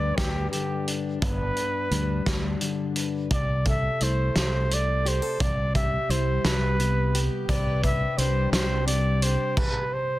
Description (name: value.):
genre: indie folk with a building arrangement.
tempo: 58 BPM (dotted quarters).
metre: 6/8.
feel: straight.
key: unclear.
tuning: A4 = 440 Hz.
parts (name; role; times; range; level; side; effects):
mellow trumpet; melody; 0.0-10.2 s; G4 to E5; -29 LUFS; right 1 dB; tape echo.
fingerpicked plugged-in steel-string acoustic guitar; accompaniment; 0.0-10.2 s; G2 to B4; -30 LUFS; left 3 dB; none.
fingered electric bass; bass; 0.0-9.4 s; G1 to D2; -26 LUFS; equal; none.
loose indie drum kit; drums; 0.2-9.7 s; crash cymbal, hi-hat, kick drum, snare drum; -27 LUFS; equal; none.
picked twelve-string acoustic guitar; accompaniment; 7.5-9.6 s; C4 to B4; -36 LUFS; left 6 dB; none.
room: little or no reverb.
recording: dense, heavily limited modern master.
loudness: -22 LUFS.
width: side -16 dB against mid.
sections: 0.0-3.3 A section; 3.3-10.2 B section.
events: stop 9.6-10.2.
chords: 0.0 G; 3.3 Am/C; 5.4 Em/C; 7.5 G/C; 9.6 N.C..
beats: 0.18 | 1.22 2.27 | 3.31 4.36 | 5.40 6.45 | 7.49 8.53 | 9.57.